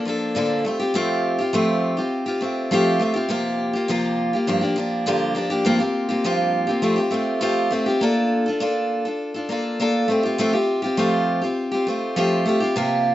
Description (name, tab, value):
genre	rock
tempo	102 BPM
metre	4/4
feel	straight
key	unclear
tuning	A4 = 440 Hz
part	picked steel-string acoustic guitar	solo	0.0-13.1 s	G2 to A4	-19 LUFS	equal	slapback echo
room	light reverb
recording	rough home demo mix, nothing above 7.8 kHz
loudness	-19 LUFS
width	side -14 dB against mid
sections	0.0-13.1 A section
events	none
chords	0.0 Bbmaj7; 0.7 Fadd9; 3.3 C7sus4; 4.5 Gm7; 5.7 C7sus4/G; 6.8 Fadd9; 8.0 Bbmaj7; 10.1 Fadd9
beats	0.36 | 0.95 1.54 2.13 2.72 | 3.31 3.89 4.48 5.07 | 5.66 6.25 6.84 7.43 | 8.02 8.61 9.21 9.80 | 10.39 10.98 11.57 12.16 | 12.76